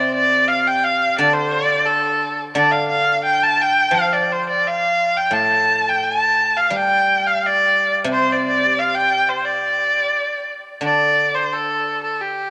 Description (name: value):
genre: chinese traditional, Chinese chamber ensemble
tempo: 87 BPM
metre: 2/4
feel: straight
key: D yu mode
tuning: A4 = 440 Hz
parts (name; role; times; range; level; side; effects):
- rich erhu; melody; 0.0-12.5 s; G4 to A5; -18 LUFS; equal; none
- guzheng; accompaniment; 0.0-12.5 s; A2 to G3; -28 LUFS; equal; none
room: moderate plate reverb, RT60 3.3 s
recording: none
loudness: -18 LUFS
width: mono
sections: 0.0-10.8 A section; 10.8-12.5 B section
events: none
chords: none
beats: 0.50 | 1.20 1.89 | 2.57 3.25 | 3.93 4.62 | 5.32 6.02 | 6.71 7.39 | 8.07 8.75 | 9.44 10.13 | 10.84 11.53 | 12.23